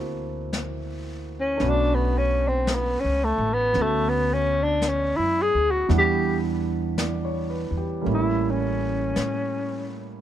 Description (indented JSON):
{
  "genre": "jazz ballad",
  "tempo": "56 BPM",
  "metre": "4/4",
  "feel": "swing 68% on 8ths",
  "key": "unclear",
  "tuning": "A4 = 440 Hz",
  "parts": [
    { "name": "warm concert grand piano", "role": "accompaniment", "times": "0.0-10.2 s", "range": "E3 to F#5", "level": "-29 LUFS", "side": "right 4 dB", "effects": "none" },
    { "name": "upright bass", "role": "bass", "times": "0.0-10.2 s", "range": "A1 to A2", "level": "-27 LUFS", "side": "equal", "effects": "none" },
    { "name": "jazz brush drum kit", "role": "drums", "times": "0.5-10.2 s", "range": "brushed snare drum, hi-hat, snare drum", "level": "-34 LUFS", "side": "left 3 dB", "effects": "none" },
    { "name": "breathy tenor saxophone", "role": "melody", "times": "1.4-10.2 s", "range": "A3 to G#4", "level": "-23 LUFS", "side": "left 1 dB", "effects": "none" }
  ],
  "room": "little or no reverb",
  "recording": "close, detailed microphones",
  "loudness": "-21 LUFS",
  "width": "side -11 dB against mid",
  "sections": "0.0-10.2 A section",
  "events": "tenor saxophone solo 0.0-10.2",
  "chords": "0.0 F#7alt; 1.6 Bm9; 5.9 Em7; 8.1 A7b9",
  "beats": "0.53 | 1.60 2.67 3.74 4.82 | 5.90 6.98 8.06 9.16"
}